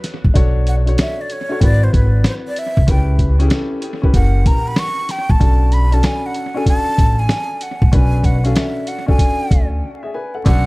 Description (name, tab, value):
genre	hip hop, jazz-hop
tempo	95 BPM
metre	4/4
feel	swing 64% on 16ths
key	unclear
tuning	A4 = 440 Hz
part	breathy jazz flute	melody	0.0-10.7 s	B4 to C#6	-23 LUFS	right 1 dB	analog delay
part	growling tenor saxophone	second line	0.0, 10.5-10.7 s	D3	-29 LUFS	right 2 dB	analog delay
part	trip hop sampler-style drum kit	drums	0.0-10.6 s	hi-hat, kick drum, snare drum	-16 LUFS	equal	none
part	upright bass	bass	0.2-10.7 s	F#1 to D2	-15 LUFS	equal	none
part	dark grand piano	accompaniment	0.3-10.7 s	B3 to G#5	-24 LUFS	left 2 dB	analog delay
room	small room ambience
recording	echo-heavy mix, vinyl crackle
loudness	-13 LUFS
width	side -23 dB against mid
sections	0.4-10.5 A section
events	flute solo 0.4-10.5; break 9.8-10.5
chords	0.4 Bm7; 1.6 G#7alt; 2.9 C#m7b5; 4.1 F#7b9; 5.4 Bm7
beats	| 0.35 0.98 1.62 2.25 | 2.88 3.51 4.14 4.78 | 5.41 6.04 6.67 7.30 | 7.93 8.56 9.20 9.83 | 10.46